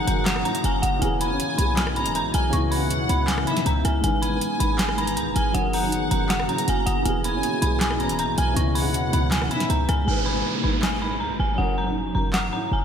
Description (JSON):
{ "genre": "hip hop, trap", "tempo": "159 BPM", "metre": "4/4", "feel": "half-time", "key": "G# minor", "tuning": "A4 = 440 Hz", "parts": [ { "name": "dark detuned synth bell", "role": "melody", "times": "0.0-12.8 s", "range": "F#5 to C#6", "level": "-27 LUFS", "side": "equal", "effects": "chorus, ping-pong delay" }, { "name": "warm studio violin section", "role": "second line", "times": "0.0-9.7 s", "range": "E5 to A#5", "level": "-31 LUFS", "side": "left 1 dB", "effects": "ping-pong delay" }, { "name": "felt-muted upright piano", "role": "accompaniment", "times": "0.0-12.8 s", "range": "C#3 to B4", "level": "-29 LUFS", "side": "right 1 dB", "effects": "lush chorus" }, { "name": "deep dark ambient pad", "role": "sustained chords", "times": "0.0-10.1 s", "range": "B2 to G#4", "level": "-29 LUFS", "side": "left 1 dB", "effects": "chorus, built-in reverb" }, { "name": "short 808-style bass", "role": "bass", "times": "0.0-12.8 s", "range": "D#1 to D#2", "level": "-25 LUFS", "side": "equal", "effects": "none" }, { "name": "booming analog drum machine", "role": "drums", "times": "0.1-12.4 s", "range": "handclaps, hi-hat, rim click, snare drum", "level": "-28 LUFS", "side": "equal", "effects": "overdrive" }, { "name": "downlifter", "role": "sound effects", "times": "10.1-12.8 s", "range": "none", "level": "-29 LUFS", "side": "right 1 dB", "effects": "none" } ], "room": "moderate lush hall reverb, RT60 1.9 s", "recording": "dreamy mix soaked in reverb", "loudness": "-20 LUFS", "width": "side -8 dB against mid", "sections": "0.0-10.1 A section; 10.1-12.8 B section", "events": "hi-hats muted 10.1-12.8", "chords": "0.0 F#; 1.0 E; 2.5 C#m7; 4.0 G#m; 5.5 F#; 7.1 E; 8.6 C#m7; 10.1 G#m; 11.6 F#" }